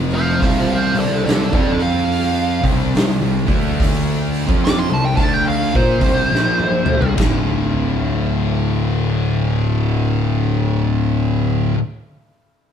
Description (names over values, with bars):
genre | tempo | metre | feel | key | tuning
stoner and doom metal | 71 BPM | 4/4 | swing 62% on 8ths | D minor | A4 = 440 Hz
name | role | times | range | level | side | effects
thick fuzz guitar | riff | 0.0-11.8 s | D2 to F4 | -20 LUFS | left 6 dB | distortion
thick fuzz guitar | riff | 0.0-11.8 s | D2 to F4 | -22 LUFS | right 8 dB | distortion
fuzz picked electric bass | bass | 0.0-11.7 s | D1 to Bb2 | -24 LUFS | equal | overdrive
fuzz lead guitar | melody | 0.1-7.1 s | A4 to D6 | -20 LUFS | right 1 dB | wah, distortion
oversized low-tuned drum kit | drums | 0.1-7.4 s | hi-hat, kick drum, ride cymbal, snare drum, toms | -20 LUFS | right 1 dB | none
room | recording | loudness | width
moderate stone room reverb, RT60 1.0 s | band playing live in one room | -15 LUFS | side -8 dB against mid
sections
0.0-7.2 A section; 7.2-10.6 B section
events
lead electric guitar solo 0.0-7.2; drum fill 6.3-7.2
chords
0.4 C5; 1.5 F5; 2.5 C5; 3.4 D5; 4.4 C5; 7.2 D5